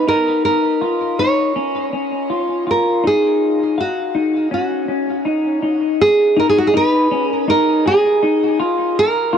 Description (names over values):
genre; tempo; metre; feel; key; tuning
dream pop; 81 BPM; 4/4; straight; G# dorian; A4 = 440 Hz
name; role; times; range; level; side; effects
nylon-string guitar; melody; 0.0-9.4 s; F#4 to C#5; -17 LUFS; right 2 dB; tape echo
clean electric guitar; arpeggios; 0.0-9.4 s; C#4 to E#5; -18 LUFS; left 3 dB; wide subtle chorus, tape echo
room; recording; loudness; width
light reverb, studio reverb; dry, gritty hardware recording, cassette tape; -14 LUFS; side -8 dB against mid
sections
0.0-6.0 A section; 6.0-9.4 B section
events
none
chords
0.1 A#m; 6.0 G#madd11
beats
| 0.07 0.82 1.56 2.30 | 3.04 3.78 4.52 5.26 | 6.00 6.74 7.48 8.22 | 8.96